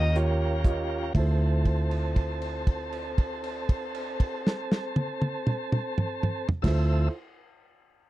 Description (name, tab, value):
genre	slow blues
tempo	39 BPM (dotted quarters)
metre	12/8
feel	straight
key	D minor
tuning	A4 = 440 Hz
part	warm concert grand piano	accompaniment	0.0-7.1 s	E4 to G5	-34 LUFS	right 4 dB	none
part	tonewheel organ	sustained chords	0.0-7.1 s	F3 to E5	-33 LUFS	equal	fast rotary speaker
part	vintage muted fingered electric bass	bass	0.0-7.1 s	D2 to Eb2	-26 LUFS	equal	none
part	warm soul drum kit	drums	0.2-6.9 s	crash cymbal, hi-hat, kick drum, snare drum, toms	-27 LUFS	equal	none
room	little or no reverb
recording	dry, close 1970s-style studio recording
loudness	-25 LUFS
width	side -15 dB against mid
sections	0.0-1.1 A section; 1.1-7.3 B section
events	grand piano fill 0.0-1.1; slowing down 0.0-1.1; held note 1.1-6.6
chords	0.0 Eb7; 1.1 Dm7